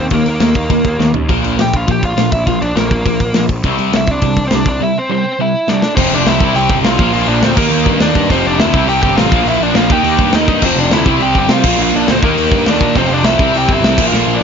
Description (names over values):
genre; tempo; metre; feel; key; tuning
punk rock; 206 BPM; 4/4; straight; unclear; A4 = 440 Hz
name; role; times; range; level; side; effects
biting lead guitar; melody; 0.0-14.4 s; Bb3 to G5; -17 LUFS; right 1 dB; overdrive
fuzz picked electric bass; bass; 0.0-14.4 s; F1 to C3; -18 LUFS; equal; overdrive
overdriven electric guitar; riff; 0.1-14.4 s; F2 to Eb4; -18 LUFS; left 12 dB; none
sludgy distorted guitar; riff; 0.1-14.4 s; F2 to Eb4; -19 LUFS; right 15 dB; overdrive
tight metal drum kit; drums; 0.1-14.2 s; crash cymbal, hi-hat, kick drum, snare drum, toms; -16 LUFS; equal; none
high-gain distorted guitar; riff; 6.0-14.4 s; F2 to Eb4; -20 LUFS; right 1 dB; distortion
room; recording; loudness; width
light reverb; nothing above 7.5 kHz; -10 LUFS; side -6 dB against mid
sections
0.0-6.0 A section; 6.0-14.4 B section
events
drum fill 1.0, 5.7, 14.1-14.4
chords
0.0 Eb5; 1.3 Bb5; 3.6 C; 6.0 F5; 6.4 C; 7.0 Bb; 7.6 Eb; 8.3 F5; 8.7 C; 9.3 Bb; 9.9 Eb; 10.6 F5; 11.1 C; 11.7 Bb; 12.2 Eb; 13.0 F5; 13.4 C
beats
| 0.12 0.41 0.70 1.00 | 1.29 1.58 1.88 2.17 | 2.46 2.76 3.05 3.34 | 3.63 3.93 4.22 4.51 | 4.81 5.10 5.39 5.68 | 5.97 6.27 6.56 6.85 | 7.14 7.43 7.72 8.01 | 8.30 8.60 8.89 9.18 | 9.47 9.76 10.05 10.34 | 10.63 10.92 11.21 11.50 | 11.79 12.09 12.38 12.67 | 12.96 13.25 13.54 13.83 | 14.12 14.41